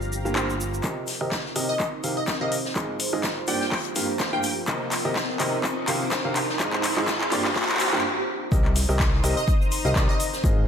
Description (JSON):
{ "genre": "piano house", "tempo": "125 BPM", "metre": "4/4", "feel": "swing 55% on 16ths", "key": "C minor", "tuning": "A4 = 440 Hz", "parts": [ { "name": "analog string pad", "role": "sustained chords", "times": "0.0-10.7 s", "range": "C4 to Eb6", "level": "-35 LUFS", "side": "left 1 dB", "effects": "ensemble chorus, phaser, vintage 12-bit sampler grit, sidechain pumping" }, { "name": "fat analog bass", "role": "bass", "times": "0.0-0.8, 8.5-10.7 s", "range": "G1 to C2", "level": "-26 LUFS", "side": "equal", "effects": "sidechain pumping" }, { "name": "garage drum kit", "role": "drums", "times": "0.0-10.5 s", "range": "cabasa, handclaps, hi-hat, rim click", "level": "-27 LUFS", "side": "left 1 dB", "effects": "high-pass filter on perc, studio reverb, high-pass filter on snare, high-pass filter on hats" }, { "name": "deep dark ambient pad", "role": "texture", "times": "0.0-10.7 s", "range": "Eb4 to Bb5", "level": "-34 LUFS", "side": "right 3 dB", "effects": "chorus, built-in reverb, sidechain pumping" }, { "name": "bright upright piano", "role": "riff", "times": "0.2-10.7 s", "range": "G2 to F5", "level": "-29 LUFS", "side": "right 1 dB", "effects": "sidechain pumping, low-pass filter, ping-pong delay" }, { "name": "electronic kick drum", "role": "drums", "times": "0.8-10.5 s", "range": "none", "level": "-25 LUFS", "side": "equal", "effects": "overdrive, high-pass filter on kick, studio reverb" }, { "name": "swinging big-band drum kit", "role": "drums", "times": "0.8-10.6 s", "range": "hi-hat, shaker, snare drum", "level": "-35 LUFS", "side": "left 2 dB", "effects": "high-pass filter on hats, studio reverb, high-pass filter on snare, high-pass filter on perc, high-pass filter on room" }, { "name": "riser", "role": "sound effects", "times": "3.0-8.0 s", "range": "none", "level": "-33 LUFS", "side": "right 1 dB", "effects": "none" }, { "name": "plucky unison lead", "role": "melody", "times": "1.7-4.5, 9.4-10.3 s", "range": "Eb5 to G5", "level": "-30 LUFS", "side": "left 1 dB", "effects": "wide subtle chorus, ping-pong delay" } ], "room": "moderate lush hall reverb, RT60 1.8 s, small room ambience", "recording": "none", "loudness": "-22 LUFS", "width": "side -8 dB against mid", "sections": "0.8-8.5 A section; 8.5-10.7 B section", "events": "build-up 0.8-8.5; drum fill 0.8-8.0; riser 3.0-8.0; stop 8.0-8.5; drop 8.5-10.7", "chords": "0.0 Gm7; 0.8 Cm7; 2.8 Ab6; 3.5 Gm7; 4.7 Cm7; 6.6 Ab6; 7.3 Gm7; 8.5 Cm7" }